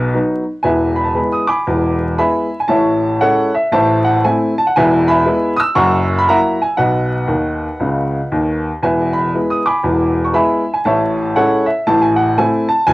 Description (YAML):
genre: jazz, stride piano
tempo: 118 BPM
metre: 4/4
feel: swing 62% on 8ths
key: E major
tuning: A4 = 441 Hz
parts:
  - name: warm upright piano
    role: solo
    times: 0.0-12.9 s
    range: E1 to E6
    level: -13 LUFS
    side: equal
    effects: none
room: moderate studio reverb, RT60 0.6 s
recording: home recording on cassette, vinyl crackle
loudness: -13 LUFS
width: side -19 dB against mid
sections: 0.7-12.9 A section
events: upright piano fill 7.3-8.8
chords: 0.0 B; 0.7 E; 2.7 Amaj7; 3.7 Am; 4.7 E; 5.8 F#7; 6.8 B; 8.8 E; 10.9 Amaj7; 11.9 Am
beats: 0.15 | 0.66 1.17 1.68 2.19 | 2.70 3.21 3.72 4.23 | 4.74 5.25 5.76 6.27 | 6.78 7.29 7.80 8.31 | 8.82 9.33 9.84 10.35 | 10.86 11.37 11.88 12.39 | 12.90